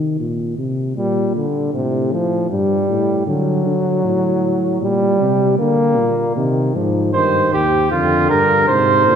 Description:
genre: classical, imitative canzona for brass ensemble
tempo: 78 BPM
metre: 4/4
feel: straight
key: unclear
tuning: A4 = 440 Hz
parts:
  - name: dark bass trombone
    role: bass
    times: 0.0-9.2 s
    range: Eb2 to Eb3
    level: -20 LUFS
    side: left 1 dB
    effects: none
  - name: mellow trombone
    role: accompaniment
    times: 1.0-9.2 s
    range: C3 to Bb3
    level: -17 LUFS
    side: equal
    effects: none
  - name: warm flugelhorn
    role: second line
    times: 7.1-9.2 s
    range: F4 to C5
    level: -14 LUFS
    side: right 3 dB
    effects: none
room: wet cathedral reverb, RT60 4.4 s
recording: minimal, uncompressed stereo recording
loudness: -14 LUFS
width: side -7 dB against mid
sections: 0.0-9.2 A section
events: none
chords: 0.2 Gm/Bb; 1.7 G9sus4; 3.3 D; 4.8 Gm/Bb; 6.4 Cm; 7.9 Ddim/F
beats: | 0.19 0.97 1.74 2.50 | 3.27 4.04 4.82 5.59 | 6.36 7.14 7.92 8.69

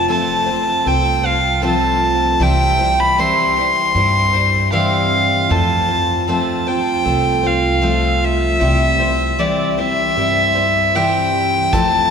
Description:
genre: acoustic folk duo or small band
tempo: 77 BPM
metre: 4/4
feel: straight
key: C major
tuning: A4 = 440 Hz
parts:
  - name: warm fiddle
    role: melody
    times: 0.0-12.1 s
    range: D5 to C6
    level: -16 LUFS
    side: equal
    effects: none
  - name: picked twelve-string acoustic guitar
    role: accompaniment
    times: 0.0-12.1 s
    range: C3 to C5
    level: -20 LUFS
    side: equal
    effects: none
  - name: upright bass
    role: bass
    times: 0.9-12.1 s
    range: C2 to G2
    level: -21 LUFS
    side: equal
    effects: none
  - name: soft brush drum kit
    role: drums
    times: 11.7-11.9 s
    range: kick drum, snare drum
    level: -21 LUFS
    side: equal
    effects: none
room: wet cathedral reverb, RT60 4.3 s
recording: recorded in a church or concert hall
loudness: -13 LUFS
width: side -6 dB against mid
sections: 0.0-5.5 A section; 5.5-12.1 A section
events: none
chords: 0.0 F; 2.4 C; 5.5 F; 8.6 C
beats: 0.09 0.87 1.64 | 2.41 3.19 3.96 4.74 | 5.51 6.29 7.06 7.84 | 8.62 9.39 10.17 10.95 | 11.73

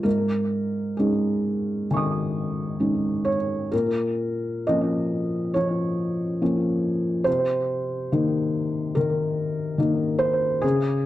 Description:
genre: neoclassical minimalist piano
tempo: 62-73 BPM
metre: 4/4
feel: rubato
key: unclear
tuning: A4 = 436 Hz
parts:
  - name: felt-muted upright piano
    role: solo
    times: 0.0-11.1 s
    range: Ab2 to Eb6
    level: -22 LUFS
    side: equal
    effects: slapback echo
room: moderate booth ambience, RT60 0.2 s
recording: dry, close 1970s-style studio recording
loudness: -22 LUFS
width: side -14 dB against mid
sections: 0.0-11.1 A section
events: none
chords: 0.1 Absus4; 3.7 Bbm; 7.3 Cm7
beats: | 0.05 0.98 1.90 2.81 | 3.72 4.66 5.54 6.41 | 7.26 8.12 8.96 9.79 | 10.63

